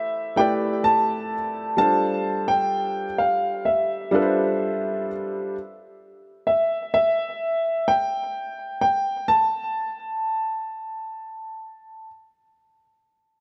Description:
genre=R&B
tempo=64 BPM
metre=4/4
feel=straight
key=unclear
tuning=A4 = 440 Hz
part: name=dark grand piano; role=melody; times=0.0-12.1 s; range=E5 to A5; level=-25 LUFS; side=equal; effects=delay
part: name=felt-muted upright piano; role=accompaniment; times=0.0-5.6 s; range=G3 to D5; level=-27 LUFS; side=equal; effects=none
room=moderate lush hall reverb, RT60 2.8 s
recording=none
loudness=-23 LUFS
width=mono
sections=0.0-13.0 A section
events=none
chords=0.0 Am7; 1.8 G9sus4; 5.5 N.C.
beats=0.85 | 1.79 2.72 3.66 4.60 | 5.54 6.47 7.41 8.35 | 9.29 10.22 11.16

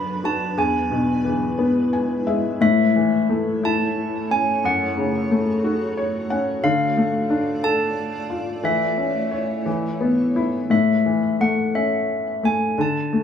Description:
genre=children's music, lullaby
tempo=59 BPM (dotted quarters)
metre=6/8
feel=straight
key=A major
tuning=A4 = 440 Hz
part: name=handbells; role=melody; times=0.0-13.2 s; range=E5 to B5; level=-24 LUFS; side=right 1 dB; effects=plate reverb, tape echo
part: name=felt-muted upright piano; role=accompaniment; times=0.0-13.2 s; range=E2 to G#5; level=-21 LUFS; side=left 3 dB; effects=none
part: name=granular cloud pad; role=sustained chords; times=0.0-10.7 s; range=E3 to D5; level=-26 LUFS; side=right 1 dB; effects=built-in reverb
room=moderate studio ambience, RT60 0.5 s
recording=small room ambience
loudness=-18 LUFS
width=side -8 dB against mid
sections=0.0-10.7 A section; 10.7-13.2 B section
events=felt piano fill 1.6-2.6, 5.6-6.6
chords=0.0 Bm/F#; 0.6 E; 2.6 A; 4.6 F#m; 6.6 Dm; 8.6 A/E; 9.7 E; 10.7 A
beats=| 0.57 1.59 | 2.61 3.63 | 4.64 5.64 | 6.64 7.63 | 8.64 9.66 | 10.70 11.74 | 12.78

